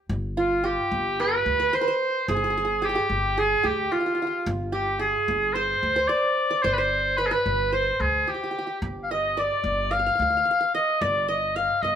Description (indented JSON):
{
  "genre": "Arabic maqam ensemble",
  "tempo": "110 BPM",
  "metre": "4/4",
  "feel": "straight",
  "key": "G maqam hijaz",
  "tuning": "A4 = 439 Hz",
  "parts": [
    { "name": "upright bass", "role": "bass", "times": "0.1-12.0 s", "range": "G1 to D2", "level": "-31 LUFS", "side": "equal", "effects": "none" },
    { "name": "clear oboe", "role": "melody", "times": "0.4-12.0 s", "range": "F4 to F5", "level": "-23 LUFS", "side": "left 2 dB", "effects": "none" },
    { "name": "qanun", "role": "second line", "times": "0.4-12.0 s", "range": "F4 to F5", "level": "-27 LUFS", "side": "right 3 dB", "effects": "none" }
  ],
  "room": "moderate large studio reverb, RT60 0.9 s",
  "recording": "band playing live in one room",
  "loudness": "-22 LUFS",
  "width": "side -8 dB against mid",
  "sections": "0.1-12.0 A section",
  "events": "none",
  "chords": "none",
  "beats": "| 0.09 0.64 1.19 1.73 | 2.28 2.83 3.37 3.92 | 4.46 5.01 5.55 6.10 | 6.64 7.19 7.74 8.28 | 8.83 9.37 9.92 10.46 | 11.01 11.55"
}